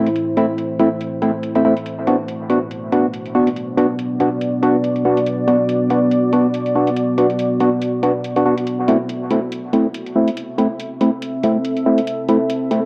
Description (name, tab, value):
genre	deep dubstep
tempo	141 BPM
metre	4/4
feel	swing 56% on 16ths, half-time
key	A dorian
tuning	A4 = 440 Hz
part	deep dark ambient pad	sustained chords	0.0-12.9 s	A3 to E5	-23 LUFS	equal	chorus, built-in reverb
part	percussive organ stab	stabs	0.0-12.8 s	A3 to F#4	-20 LUFS	equal	chorus, dub echo
part	electronic hi-hat	drums	0.1-12.8 s	none	-40 LUFS	equal	overdrive, low-pass filter on hats, low-pass filter on room
room	moderate plate reverb, RT60 1.8 s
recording	echo-heavy mix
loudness	-18 LUFS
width	mono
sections	0.0-12.9 A section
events	filter sweep on synth stab 0.0-12.9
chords	0.0 Am; 1.9 Bm; 8.7 Am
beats	| 0.16 0.58 1.01 1.43 | 1.86 2.29 2.71 3.14 | 3.56 3.99 4.41 4.84 | 5.26 5.69 6.12 6.54 | 6.97 7.39 7.82 8.24 | 8.67 9.09 9.52 9.95 | 10.37 10.80 11.22 11.65 | 12.07 12.50